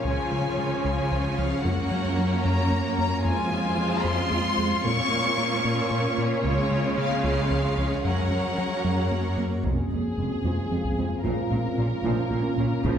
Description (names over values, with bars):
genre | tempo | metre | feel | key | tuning
cinematic, hybrid orchestral and electronic film score | 75 BPM (dotted quarters) | 6/8 | straight | F phrygian | A4 = 440 Hz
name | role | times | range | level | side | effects
warm symphonic violin section | melody | 0.0-13.0 s | Db5 to Db6 | -30 LUFS | left 3 dB | low-pass filter
rich symphonic violin section | second line | 0.0-13.0 s | F4 to Db5 | -32 LUFS | left 1 dB | none
rich studio viola section | accompaniment | 0.0-13.0 s | F3 to F4 | -32 LUFS | right 2 dB | low-pass filter
granular cloud pad | sustained chords | 0.0-13.0 s | Ab3 to F5 | -31 LUFS | equal | built-in reverb, low-pass filter
rubbery square bass | riff | 0.0-13.0 s | Db2 to Bb3 | -29 LUFS | left 2 dB | low-pass filter
clear symphonic cello section | bass | 0.0-12.9 s | F2 to Db3 | -31 LUFS | right 1 dB | none
soft round pluck | arpeggios | 0.1-13.0 s | Db3 to F4 | -34 LUFS | right 3 dB | none
warm French horn section | sustained chords | 9.6-13.0 s | C4 to Ab4 | -34 LUFS | right 2 dB | low-pass filter
warm symphonic double bass section | bass | 9.6-12.9 s | F1 to Db2 | -32 LUFS | right 2 dB | none
taiko ensemble | drums | 9.6-13.0 s | none | -32 LUFS | equal | none
room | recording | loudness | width
wet recital hall reverb, RT60 1.8 s | recorded in a church or concert hall | -22 LUFS | side -8 dB against mid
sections
0.0-9.6 A section; 9.6-13.0 B section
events
none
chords
0.0 Db; 1.6 Gb; 3.2 Fm; 4.8 Bbm; 6.4 Db; 8.0 Gb; 9.6 Fm; 11.2 Bbm